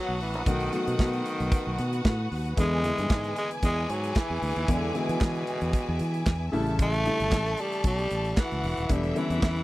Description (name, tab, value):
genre	disco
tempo	114 BPM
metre	4/4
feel	straight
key	unclear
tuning	A4 = 439 Hz
part	growling tenor saxophone	melody	0.0-9.6 s	B2 to A3	-31 LUFS	equal	none
part	dark studio string section	second line	0.0-9.6 s	E4 to A5	-35 LUFS	equal	none
part	warm concert grand piano	accompaniment	0.0-9.6 s	C#3 to F#4	-33 LUFS	left 2 dB	none
part	clear studio string section	sustained chords	0.0-9.6 s	A4 to D#6	-40 LUFS	left 3 dB	none
part	fingered electric bass	bass	0.1-9.6 s	D#1 to E3	-30 LUFS	equal	none
part	modern studio drum kit	drums	0.2-9.6 s	hi-hat, kick drum, snare drum	-25 LUFS	equal	none
part	group handclap	percussion	3.1-9.6 s	none	-42 LUFS	right 5 dB	none
room	little or no reverb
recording	dry, close 1970s-style studio recording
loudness	-24 LUFS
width	side -17 dB against mid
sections	0.0-9.6 A section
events	none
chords	0.0 B7; 2.6 E7; 6.5 A7; 8.9 Em7